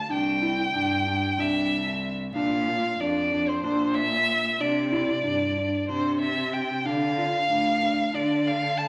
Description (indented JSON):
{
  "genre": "contemporary instrumental, chamber music in an uneven meter",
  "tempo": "187 BPM (eighths)",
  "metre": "7/8",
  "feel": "straight",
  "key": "unclear",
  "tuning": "A4 = 440 Hz",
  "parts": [
    { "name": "warm violin", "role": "melody", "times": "0.0-8.9 s", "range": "C5 to A5", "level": "-28 LUFS", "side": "equal", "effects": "none" },
    { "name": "warm cello", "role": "bass", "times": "0.0-8.9 s", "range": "C2 to D3", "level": "-33 LUFS", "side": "equal", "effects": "none" },
    { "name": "felt-muted upright piano", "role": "arpeggios", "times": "0.1-8.5 s", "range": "D4 to F4", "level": "-30 LUFS", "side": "equal", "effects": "none" }
  ],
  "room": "wet recital hall reverb, RT60 1.6 s",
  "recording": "vinyl crackle",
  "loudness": "-25 LUFS",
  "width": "mono",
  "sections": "0.0-8.9 A section",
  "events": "none",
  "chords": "0.1 Csus2; 2.3 Bb; 4.6 Csus2; 6.8 Dm"
}